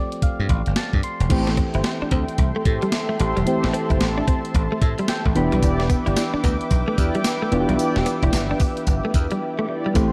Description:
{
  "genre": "R&B, new jack swing",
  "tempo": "111 BPM",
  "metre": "4/4",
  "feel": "swing 62% on 16ths",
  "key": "A minor",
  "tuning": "A4 = 437 Hz",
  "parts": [
    { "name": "soft electric-piano-like synth keys", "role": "accompaniment", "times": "0.0-10.1 s", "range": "E3 to C6", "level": "-28 LUFS", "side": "equal", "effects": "chorus" },
    { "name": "crisp 8-bit digital drum machine", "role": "drums", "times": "0.1-10.1 s", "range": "crash cymbal, hi-hat, kick drum, snare drum, tambourine", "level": "-24 LUFS", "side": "equal", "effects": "none" },
    { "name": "dry thumbed slap bass", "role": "bass", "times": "0.4-10.1 s", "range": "E1 to A2", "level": "-26 LUFS", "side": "equal", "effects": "none" },
    { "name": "warm analog pad", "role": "sustained chords", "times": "1.3-10.1 s", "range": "A4 to D6", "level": "-31 LUFS", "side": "equal", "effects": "chorus" },
    { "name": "mellow synth brass", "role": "stabs", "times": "1.3-9.9 s", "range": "E4 to D5", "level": "-33 LUFS", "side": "equal", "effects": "chorus, digital delay" },
    { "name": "direct-recorded clean electric guitar", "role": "riff", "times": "1.5-10.1 s", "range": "G3 to E4", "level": "-30 LUFS", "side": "equal", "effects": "subtle chorus" }
  ],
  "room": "light reverb, digital ambience",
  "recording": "dark, warm production",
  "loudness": "-21 LUFS",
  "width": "mono",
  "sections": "0.0-1.3 A section; 1.3-10.0 B section",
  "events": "synth keys fill 0.0-1.3, 4.5-5.6; break 9.4-10.0",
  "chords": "0.0 G9sus4; 1.3 Am7; 5.4 Em7",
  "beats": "0.22 0.76 | 1.30 1.84 2.38 2.92 | 3.46 4.00 4.55 5.09 | 5.63 6.17 6.71 7.25 | 7.79 8.33 8.87 9.41 | 9.95"
}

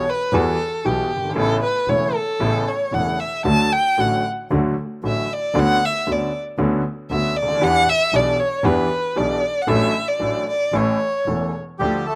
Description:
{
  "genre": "tango",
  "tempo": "116 BPM",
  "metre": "4/4",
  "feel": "rubato",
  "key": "D major",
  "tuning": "A4 = 441 Hz",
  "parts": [
    { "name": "warm violin", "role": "second line", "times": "0.0-11.5 s", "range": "G4 to A5", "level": "-23 LUFS", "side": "equal", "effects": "none" },
    { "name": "clear grand piano", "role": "accompaniment", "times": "0.0-12.0 s", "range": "E1 to A4", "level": "-25 LUFS", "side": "equal", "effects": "none" },
    { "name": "rich double bass", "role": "bass", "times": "0.0-12.0 s", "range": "E1 to E2", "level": "-27 LUFS", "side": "equal", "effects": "none" },
    { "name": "bandoneon", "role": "melody", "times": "11.8-12.2 s", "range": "G3 to A4", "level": "-24 LUFS", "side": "equal", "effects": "none" }
  ],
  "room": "little or no reverb",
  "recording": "recorded outdoors, with no room sound",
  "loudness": "-20 LUFS",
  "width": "mono",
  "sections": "0.0-11.8 A section",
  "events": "violin solo 0.0-11.8",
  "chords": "0.0 Emadd9; 1.4 Aadd9; 3.5 D; 5.6 Bmadd9/D; 7.6 Em7; 9.7 D/A; 10.7 A",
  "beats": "0.33 0.85 | 1.37 1.89 2.41 2.93 | 3.46 3.99 4.51 5.04 | 5.55 6.07 6.59 7.11 | 7.62 8.13 8.65 9.17 | 9.69 10.21 10.73 11.26 | 11.80"
}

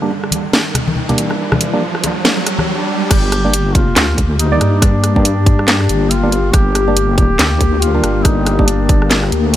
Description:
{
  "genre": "deep dubstep",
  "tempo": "140 BPM",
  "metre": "4/4",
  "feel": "swing 59% on 16ths, half-time",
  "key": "G minor",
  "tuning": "A4 = 442 Hz",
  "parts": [
    { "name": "dark analog pad", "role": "sustained chords", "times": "0.0-9.6 s", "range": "G3 to G4", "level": "-22 LUFS", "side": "left 6 dB", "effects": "chorus" },
    { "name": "percussive organ stab", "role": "stabs", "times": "0.0-8.7 s", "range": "G3 to D5", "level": "-22 LUFS", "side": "right 3 dB", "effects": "chorus, dub echo" },
    { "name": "riser", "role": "sound effects", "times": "0.0-3.1 s", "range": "none", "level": "-22 LUFS", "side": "right 2 dB", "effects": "none" },
    { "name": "bongos and congas", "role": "percussion", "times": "0.1-2.7 s", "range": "none", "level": "-20 LUFS", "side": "left 3 dB", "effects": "none" },
    { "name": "garage drum kit", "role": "drums", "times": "0.2-9.6 s", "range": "crash cymbal, handclaps, hi-hat, rim click, snare drum", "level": "-17 LUFS", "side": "equal", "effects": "none" },
    { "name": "warm duduk", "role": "melody", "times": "2.7-9.6 s", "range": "D4 to G4", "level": "-20 LUFS", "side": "equal", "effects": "dub echo" },
    { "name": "deep soft wobble bass", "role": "bass", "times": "3.1-9.6 s", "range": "G1 to G2", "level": "-15 LUFS", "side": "equal", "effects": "chorus" },
    { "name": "electronic kick drum", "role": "drums", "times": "3.1-9.0 s", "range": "none", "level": "-13 LUFS", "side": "equal", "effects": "none" }
  ],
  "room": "light reverb",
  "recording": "none",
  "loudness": "-11 LUFS",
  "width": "side -12 dB against mid",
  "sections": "0.0-3.1 A section; 3.1-9.6 B section",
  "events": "build-up 0.0-3.1; riser 0.0-3.1; filter sweep on synth stab 0.0-3.1; stop 2.7-3.1; drop 3.1-9.6",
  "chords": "0.0 Gm",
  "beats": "0.11 0.54 0.96 | 1.39 1.82 2.25 2.68 | 3.11 3.54 3.96 4.39 | 4.82 5.25 5.68 6.11 | 6.54 6.96 7.39 7.82 | 8.25 8.68 9.11 9.54"
}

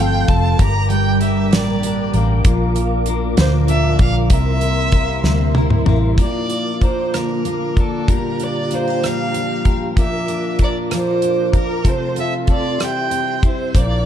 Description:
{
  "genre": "six-eight pop ballad",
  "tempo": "64 BPM (dotted quarters)",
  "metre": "6/8",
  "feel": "straight",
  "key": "unclear",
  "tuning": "A4 = 439 Hz",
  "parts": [
    { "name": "rich violin", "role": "melody", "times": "0.0-14.1 s", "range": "A4 to Bb5", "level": "-23 LUFS", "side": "right 2 dB", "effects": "none" },
    { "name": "picked steel-string acoustic guitar", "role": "accompaniment", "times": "0.0-14.1 s", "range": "G2 to Bb4", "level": "-22 LUFS", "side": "right 1 dB", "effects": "double-tracked left and right" },
    { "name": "mellow tonewheel organ", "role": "sustained chords", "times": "0.0-14.1 s", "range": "Bb3 to D6", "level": "-25 LUFS", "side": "equal", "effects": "chorus vibrato, slow rotary speaker" },
    { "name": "clean electric guitar", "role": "arpeggios", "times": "0.0-14.1 s", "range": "Bb2 to C5", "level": "-28 LUFS", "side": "left 8 dB", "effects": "phaser, digital delay" },
    { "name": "vintage muted fingered electric bass", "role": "bass", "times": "0.0-6.2, 13.7-14.1 s", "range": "F1 to D2", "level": "-18 LUFS", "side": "equal", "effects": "none" },
    { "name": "damped 70s drum kit", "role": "drums", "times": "0.3-13.9 s", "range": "hi-hat, kick drum, rim click, snare drum, toms", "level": "-17 LUFS", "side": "equal", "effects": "none" }
  ],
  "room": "light reverb",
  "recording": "dark, warm production",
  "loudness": "-15 LUFS",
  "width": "side -10 dB against mid",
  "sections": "0.0-6.2 A section; 6.2-14.1 B section",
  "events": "drum fill 5.2-6.2",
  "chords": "0.0 F; 0.6 Gm; 2.4 Bb; 4.3 C7; 6.2 Bb; 8.1 Gm7/Bb; 10.0 Bb; 11.9 F/C; 12.8 C",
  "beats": "| 0.59 1.52 | 2.45 3.37 | 4.30 5.24 | 6.18 7.13 | 8.08 9.03 | 9.97 10.91 | 11.85 12.80 | 13.75"
}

